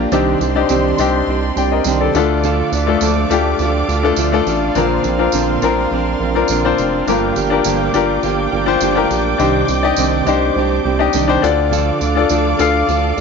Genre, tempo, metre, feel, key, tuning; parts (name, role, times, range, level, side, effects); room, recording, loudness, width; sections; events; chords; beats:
piano-driven pop; 103 BPM; 4/4; straight; A4 = 438 Hz
bright upright piano; accompaniment; 0.0-13.2 s; G2 to G5; -16 LUFS; left 9 dB
warm studio string section; sustained chords; 0.0-13.2 s; G4 to D6; -23 LUFS; right 2 dB
fingerpicked plugged-in steel-string acoustic guitar; riff; 0.0-13.2 s; G2 to Bb4; -20 LUFS; right 13 dB
round analog bass; bass; 0.0-13.2 s; F1 to D2; -20 LUFS; right 2 dB
tambourine; percussion; 0.1-13.2 s; -27 LUFS; right 16 dB
light reverb, small room ambience; 1960s-style stereo with parts hard left and right, nothing above 7.8 kHz; -13 LUFS; side -5 dB against mid
0.0-13.2 A section
0.1 Cmadd9; 2.1 Dm; 4.8 Bbadd9; 7.1 Gm7; 9.4 Cmadd9; 11.4 Dm
| 0.12 0.69 1.27 1.85 | 2.44 3.02 3.60 4.18 | 4.76 5.34 5.92 6.50 | 7.08 7.66 8.24 8.82 | 9.40 9.98 10.56 11.14 | 11.72 12.31 12.89